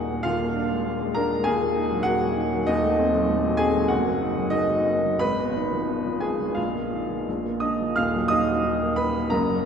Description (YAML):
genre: classical, romantic character piece for solo piano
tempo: 83-101 BPM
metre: 2/4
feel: rubato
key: Eb minor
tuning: A4 = 440 Hz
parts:
  - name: warm baby grand piano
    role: solo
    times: 0.0-9.7 s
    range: Eb1 to F6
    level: -21 LUFS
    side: equal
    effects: none
room: wet cathedral reverb, RT60 5.4 s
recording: heard from further back in the room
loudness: -21 LUFS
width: side -7 dB against mid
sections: 0.0-8.0 A section; 8.0-9.7 B section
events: none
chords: 0.2 Bb7/Eb; 1.5 Ebm; 2.7 Ebdim7; 3.9 Ebm/Gb; 5.2 Fm7b5/Ab; 6.6 Bbsus4; 7.3 Bb; 8.0 Ebm